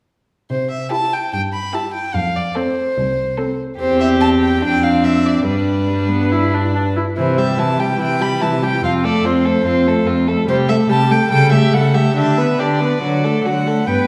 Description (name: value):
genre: quick classical-period movement for string quartet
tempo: 144 BPM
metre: 4/4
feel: straight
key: C major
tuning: A4 = 440 Hz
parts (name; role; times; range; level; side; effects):
- warm violin; melody; 0.5-14.1 s; B4 to B5; -23 LUFS; equal; none
- dark cello; bass; 0.5-14.0 s; C2 to D3; -22 LUFS; equal; none
- rich violin; second line; 0.9-14.1 s; D4 to B4; -24 LUFS; equal; none
- warm viola; accompaniment; 0.9-14.1 s; E3 to E4; -21 LUFS; equal; none
room: wet recital hall reverb, RT60 1.3 s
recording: recorded in a church or concert hall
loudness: -17 LUFS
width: mono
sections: 0.5-13.9 A section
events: none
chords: 0.5 C; 2.2 F; 3.8 C/E; 4.6 Dm7/F; 5.5 G; 7.2 C; 8.8 F; 10.5 Am7/C; 11.3 A7/C#; 12.2 G/D; 13.0 D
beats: | 0.50 0.92 1.33 1.74 | 2.15 2.56 2.97 3.38 | 3.80 4.21 4.62 5.04 | 5.47 5.89 6.32 6.74 | 7.17 7.58 8.00 8.42 | 8.84 9.25 9.66 10.07 | 10.48 10.90 11.31 11.73 | 12.16 12.59 13.02 13.45 | 13.88